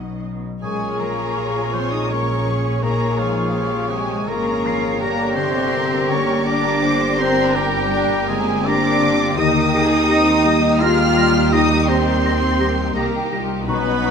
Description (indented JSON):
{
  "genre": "cinematic",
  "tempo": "83 BPM",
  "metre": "3/4",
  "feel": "rubato",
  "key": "Bb dorian",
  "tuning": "A4 = 439 Hz",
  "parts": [
    { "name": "muted studio violin section", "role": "melody", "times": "0.0-14.1 s", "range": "F5 to F6", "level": "-25 LUFS", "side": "left 1 dB", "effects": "none" },
    { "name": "muted studio violin section", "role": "second line", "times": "0.0-14.1 s", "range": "D#4 to D#5", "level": "-26 LUFS", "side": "equal", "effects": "none" },
    { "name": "muted studio viola section", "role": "accompaniment", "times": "0.0-14.1 s", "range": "C3 to F#4", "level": "-26 LUFS", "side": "left 2 dB", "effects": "none" },
    { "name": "mellow French horn section", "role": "sustained chords", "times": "0.0-14.1 s", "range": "C3 to F4", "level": "-23 LUFS", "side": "left 2 dB", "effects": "none" },
    { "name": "concert harp", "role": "arpeggios", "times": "0.0-14.1 s", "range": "Bb2 to Bb4", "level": "-28 LUFS", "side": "left 10 dB", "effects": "none" },
    { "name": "muted studio cello section", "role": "bass", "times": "0.0-14.1 s", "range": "B2 to F4", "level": "-26 LUFS", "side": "right 3 dB", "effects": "none" },
    { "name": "muted studio double bass section", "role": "bass", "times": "0.0-14.1 s", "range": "G1 to Eb2", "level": "-24 LUFS", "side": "right 3 dB", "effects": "none" },
    { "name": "dark clarinet", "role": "second line", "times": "0.6-14.1 s", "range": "D#4 to Ab4", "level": "-28 LUFS", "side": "left 1 dB", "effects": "none" },
    { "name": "mellow concert flute", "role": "second line", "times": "0.6-14.1 s", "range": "Db6 to C7", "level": "-27 LUFS", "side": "right 2 dB", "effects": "none" },
    { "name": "mellow oboe", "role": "second line", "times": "0.6-14.1 s", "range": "F4 to F5", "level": "-27 LUFS", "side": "right 2 dB", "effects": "none" }
  ],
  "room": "moderate recital hall reverb, RT60 1.6 s",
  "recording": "close, detailed microphones",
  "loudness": "-16 LUFS",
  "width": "side -6 dB against mid",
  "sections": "0.6-14.1 A section",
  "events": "none",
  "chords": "0.0 Badd9; 0.6 Bbm7; 5.0 Gm; 9.4 Eb",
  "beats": "| 0.63 1.37 2.10 | 2.83 3.56 4.29 | 5.01 5.73 6.46 | 7.19 7.92 8.66 | 9.39 10.10 10.81 | 11.53 12.25 12.96 | 13.68"
}